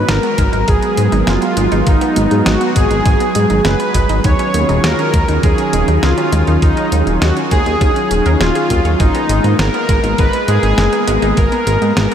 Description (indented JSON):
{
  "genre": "synthwave",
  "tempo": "101 BPM",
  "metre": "4/4",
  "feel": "straight",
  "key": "G# dorian",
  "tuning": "A4 = 440 Hz",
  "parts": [
    { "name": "soft supersaw", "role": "melody", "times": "0.0-12.1 s", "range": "D#4 to C#5", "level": "-16 LUFS", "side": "equal", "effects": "analog delay" },
    { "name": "lush unison pad", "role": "sustained chords", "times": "0.0-12.1 s", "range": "D#3 to G#4", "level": "-19 LUFS", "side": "right 1 dB", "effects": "chorus, sidechain pumping" },
    { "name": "chorused synth bass", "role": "bass", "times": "0.0-12.1 s", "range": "D#1 to G#2", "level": "-16 LUFS", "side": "equal", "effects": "none" },
    { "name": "wide unison pluck", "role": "arpeggios", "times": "0.1-12.1 s", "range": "G#3 to C#5", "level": "-24 LUFS", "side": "right 2 dB", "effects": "analog delay" },
    { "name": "detuned 8-bit digital drum machine", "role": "drums", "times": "0.1-12.1 s", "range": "hi-hat, snare drum", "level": "-23 LUFS", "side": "equal", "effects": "none" },
    { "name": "electronic kick drum", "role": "drums", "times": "0.4-11.5 s", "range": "none", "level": "-15 LUFS", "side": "equal", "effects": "none" }
  ],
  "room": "moderate huge ambient reverb, RT60 7.8 s",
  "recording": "dreamy mix soaked in reverb",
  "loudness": "-11 LUFS",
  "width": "side -9 dB against mid",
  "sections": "0.0-12.1 A section",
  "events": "none",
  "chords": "0.0 G#m; 4.2 D#7sus4; 9.0 G#madd9"
}